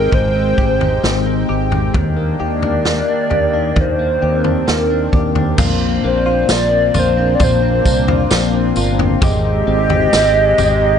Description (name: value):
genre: dream pop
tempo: 66 BPM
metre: 4/4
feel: straight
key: unclear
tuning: A4 = 441 Hz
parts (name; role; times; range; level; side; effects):
- warbly nostalgic lead; melody; 0.0-11.0 s; Bb4 to Eb5; -18 LUFS; equal; chorus, ping-pong delay
- phased analog pad; sustained chords; 0.0-11.0 s; Eb3 to G5; -20 LUFS; left 1 dB; phaser, chorus
- direct-recorded clean electric guitar; arpeggios; 0.0-11.0 s; Bb2 to G4; -22 LUFS; left 2 dB; analog chorus, ping-pong delay
- fretless electric bass; bass; 0.0-11.0 s; G1 to Eb2; -19 LUFS; right 1 dB; wide subtle chorus
- vintage drum kit; drums; 0.1-10.8 s; crash cymbal, kick drum, snare drum, tambourine, toms; -19 LUFS; equal; none
room: light reverb, studio reverb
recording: nothing above 10.6 kHz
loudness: -12 LUFS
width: side -8 dB against mid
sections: 0.0-5.6 A section; 5.6-11.0 B section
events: none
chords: 0.0 Abmaj7; 1.9 Ebmaj7; 5.6 Bbadd9; 9.2 Abmaj7